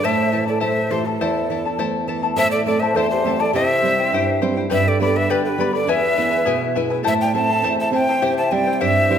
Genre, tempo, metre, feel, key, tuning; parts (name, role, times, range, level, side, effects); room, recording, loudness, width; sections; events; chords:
andean folk, Andean ensemble; 103 BPM; 2/4; straight; A minor; A4 = 440 Hz
breathy bright quena; melody; 0.0-9.2 s; A4 to A5; -21 LUFS; equal
breathy mellow large quena; second line; 0.0-9.2 s; E4 to E5; -26 LUFS; right 2 dB
charango; accompaniment; 0.0-9.2 s; E4 to B5; -22 LUFS; left 6 dB
nylon-string guitar; accompaniment; 0.0-9.2 s; E2 to E4; -22 LUFS; right 4 dB
wet recital hall reverb, RT60 1.6 s; -17 LUFS; side -8 dB against mid
0.0-2.4 A section; 2.4-9.2 B section
0.0 Am; 3.5 C; 4.7 G; 5.9 E; 7.0 Am; 8.2 C